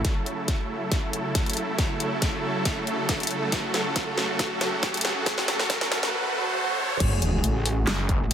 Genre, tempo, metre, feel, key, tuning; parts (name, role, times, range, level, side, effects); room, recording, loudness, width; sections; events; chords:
heavy wobble dubstep; 138 BPM; 4/4; half-time; F# minor; A4 = 442 Hz
supersaw chords; sustained chords; 0.0-8.3 s; C#3 to A4; -28 LUFS; right 1 dB; sidechain pumping, low-pass filter
metallic wobble bass; bass; 0.0, 7.0-8.3 s; E1 to A1; -25 LUFS; equal; chorus, overdrive
dubstep drum kit; drums; 0.0-8.3 s; crash cymbal, handclaps, hi-hat, snare drum; -28 LUFS; left 1 dB; high-pass filter on snare, high-pass filter on hats, high-pass filter on cymbals, high-pass filter on room
electronic kick drum; drums; 0.0-8.2 s; -27 LUFS; equal
swell, riser and sub drop; sound effects; 0.0-8.3 s; -31 LUFS; equal
snarling distorted saw bass; bass; 7.9-8.2 s; F#1; -27 LUFS; equal; distortion, overdrive
light reverb, digital ambience; high-pass filter; -23 LUFS; side -9 dB against mid
0.0-7.0 A section; 7.0-8.3 B section
build-up 0.0-7.0; drum fill 0.0-6.1; riser 0.0-7.0; filter sweep 0.0-7.0; swell 6.1-7.0; drop 7.0-8.3; impact 7.0-8.3
0.0 F#m7; 7.0 F#madd9